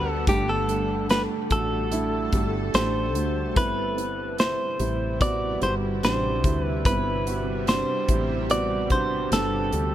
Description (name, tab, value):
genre	pop ballad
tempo	73 BPM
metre	4/4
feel	straight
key	unclear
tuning	A4 = 439 Hz
part	direct-recorded clean electric guitar	melody	0.0-9.9 s	G4 to D5	-26 LUFS	equal	none
part	dark upright piano	accompaniment	0.0-9.9 s	G2 to A4	-29 LUFS	right 3 dB	none
part	shimmering ambient pad	sustained chords	0.0-9.9 s	C3 to F#5	-32 LUFS	equal	chorus, built-in reverb
part	woody fretless electric bass	bass	0.0-9.9 s	G1 to D2	-29 LUFS	left 1 dB	none
part	modern studio drum kit	drums	0.3-9.9 s	hi-hat, kick drum, snare drum	-26 LUFS	equal	none
room	studio ambience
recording	none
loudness	-22 LUFS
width	side -12 dB against mid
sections	0.0-9.9 A section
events	none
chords	0.3 Dsus4/G; 3.6 Cmaj7/G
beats	| 0.28 1.10 1.92 2.74 | 3.56 4.38 5.21 6.03 | 6.85 7.67 8.49 9.32